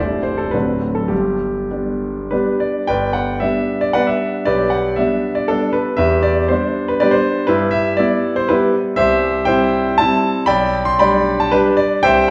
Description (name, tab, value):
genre	classical, romantic triple-time dance for piano with dotted rhythms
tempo	94-128 BPM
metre	3/4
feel	rubato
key	G major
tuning	A4 = 440 Hz
part	clear concert grand piano	solo	0.0-12.3 s	C1 to C6	-17 LUFS	equal	none
room	wet recital hall reverb, RT60 1.4 s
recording	heard from further back in the room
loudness	-17 LUFS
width	mono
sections	0.0-2.9 A section; 2.9-12.3 B section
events	none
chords	0.0 Am7/C; 0.5 D7; 1.1 G; 4.5 G/B; 6.0 Em7; 7.5 Em/G; 9.0 C; 10.5 G/B